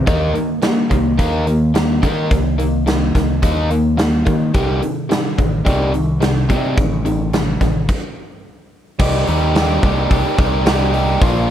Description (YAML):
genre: classic rock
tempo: 108 BPM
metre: 4/4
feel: straight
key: C dorian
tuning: A4 = 440 Hz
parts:
  - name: biting overdriven guitar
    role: riff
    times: 0.0-11.5 s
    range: Bb2 to G4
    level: -18 LUFS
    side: equal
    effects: none
  - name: growling fingered electric bass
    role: bass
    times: 0.0-11.5 s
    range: A1 to Eb3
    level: -19 LUFS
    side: equal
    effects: overdrive
  - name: big rock drum kit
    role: drums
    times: 0.1-11.3 s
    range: crash cymbal, hi-hat, kick drum, snare drum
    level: -19 LUFS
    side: equal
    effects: none
room: light reverb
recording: none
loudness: -14 LUFS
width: side -10 dB against mid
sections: 0.0-9.0 A section; 9.0-11.5 B section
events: stop 7.9-9.0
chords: 0.1 Eb5; 4.5 Cm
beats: | 0.07 0.63 1.19 1.75 | 2.31 2.87 3.42 3.98 | 4.54 5.10 5.66 6.21 | 6.77 7.33 7.88 8.44 | 9.00 9.55 10.11 10.66 | 11.21